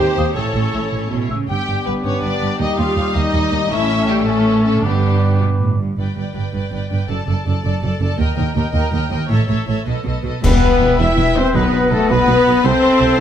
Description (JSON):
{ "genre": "cinematic, heroic adventure film score", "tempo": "108 BPM (dotted quarters)", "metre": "6/8", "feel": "straight", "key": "G lydian", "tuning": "A4 = 440 Hz", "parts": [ { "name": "rich symphonic violin section", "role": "melody", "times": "0.0-13.2 s", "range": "G4 to A5", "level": "-26 LUFS", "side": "left 3 dB", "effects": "none" }, { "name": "warm symphonic violin section", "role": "second line", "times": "0.0-13.2 s", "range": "G3 to E5", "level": "-26 LUFS", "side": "left 4 dB", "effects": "none" }, { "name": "warm symphonic viola section", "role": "accompaniment", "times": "0.0-13.2 s", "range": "A3 to B4", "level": "-25 LUFS", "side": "right 2 dB", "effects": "none" }, { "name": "mellow French horn section", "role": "sustained chords", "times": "0.0-5.8, 10.4-13.2 s", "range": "G3 to E4", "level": "-21 LUFS", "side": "left 5 dB", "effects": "none" }, { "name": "dark trumpet section", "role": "stabs", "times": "0.0-5.8, 10.4-13.2 s", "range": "G4 to E5", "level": "-23 LUFS", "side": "right 1 dB", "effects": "none" }, { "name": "rich symphonic cello section", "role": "bass", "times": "0.0-13.1 s", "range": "Eb2 to C#3", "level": "-22 LUFS", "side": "right 2 dB", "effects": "none" }, { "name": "warm symphonic double bass section", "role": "bass", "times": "0.0-13.1 s", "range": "E1 to Eb2", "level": "-21 LUFS", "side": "right 3 dB", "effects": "none" }, { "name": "dark clarinet", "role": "second line", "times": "0.2-5.8, 10.4-13.2 s", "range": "G3 to B4", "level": "-24 LUFS", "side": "left 3 dB", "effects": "none" }, { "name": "mellow hollow silver concert flute", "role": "second line", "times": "0.2-5.8, 10.4-13.2 s", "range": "F#5 to E6", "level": "-29 LUFS", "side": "left 1 dB", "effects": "none" }, { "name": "warm oboe", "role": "second line", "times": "10.4-13.2 s", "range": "D#5 to E5", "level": "-28 LUFS", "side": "equal", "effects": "none" }, { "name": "mellow tuba", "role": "bass", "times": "10.4-13.1 s", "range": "E1 to C2", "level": "-24 LUFS", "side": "right 4 dB", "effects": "none" }, { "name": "clash cymbals and concert bass drum", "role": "percussion", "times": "10.4-11.1 s", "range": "none", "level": "-21 LUFS", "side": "equal", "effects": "none" }, { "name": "timpani", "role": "percussion", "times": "10.4-12.1 s", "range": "E2 to B2", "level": "-23 LUFS", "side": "left 2 dB", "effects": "none" } ], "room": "moderate scoring stage reverb, RT60 1.7 s", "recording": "close, detailed microphones", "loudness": "-14 LUFS", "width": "side -9 dB against mid", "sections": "0.0-6.0 A section; 6.0-10.4 B section; 10.4-13.2 C section", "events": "band accent 10.4-10.8", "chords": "0.4 A; 1.5 G; 2.6 Eb; 3.7 A; 4.8 G; 7.1 D/F#; 8.2 Eb; 9.3 A; 9.9 B7; 10.4 Em; 11.5 B; 12.6 Am/C" }